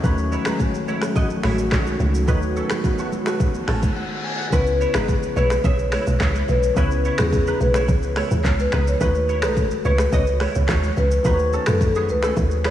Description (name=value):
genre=afrobeats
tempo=107 BPM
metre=4/4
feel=straight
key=C# minor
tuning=A4 = 439 Hz
part: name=bell-like tine electric piano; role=accompaniment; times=0.0-12.7 s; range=C#3 to G#5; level=-28 LUFS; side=left 4 dB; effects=lush chorus
part: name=warm analog pad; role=sustained chords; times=0.0-4.5 s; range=D#3 to F#4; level=-27 LUFS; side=equal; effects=chorus
part: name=direct-recorded clean electric guitar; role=riff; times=0.0-12.7 s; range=A3 to E5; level=-30 LUFS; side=right 3 dB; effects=ensemble chorus, diffuse ambient delay
part: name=deep log drum bass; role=bass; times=0.0-12.7 s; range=G#1 to F#2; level=-22 LUFS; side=equal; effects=none
part: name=afro-pop drum kit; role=drums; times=0.0-12.7 s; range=finger snaps, handclaps, hi-hat, kick drum, rim click, shaker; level=-23 LUFS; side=equal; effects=vintage 12-bit sampler grit
part: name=congas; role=percussion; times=0.5-12.7 s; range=none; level=-30 LUFS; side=right 2 dB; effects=none
part: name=reverse cymbal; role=sound effects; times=3.6-4.5 s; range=none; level=-32 LUFS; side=left 2 dB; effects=none
part: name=marimba with medium mallets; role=melody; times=4.5-12.7 s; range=G#4 to C#5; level=-23 LUFS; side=left 1 dB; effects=diffuse ambient delay
room=moderate lush hall reverb, RT60 2.5 s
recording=dreamy mix soaked in reverb, small room ambience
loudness=-18 LUFS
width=side -12 dB against mid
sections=0.0-4.5 A section; 4.5-12.7 B section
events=reverse cymbal 3.6-4.5; break 4.0-4.5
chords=0.0 D#m7b5; 4.5 C#m7; 9.0 D#m7b5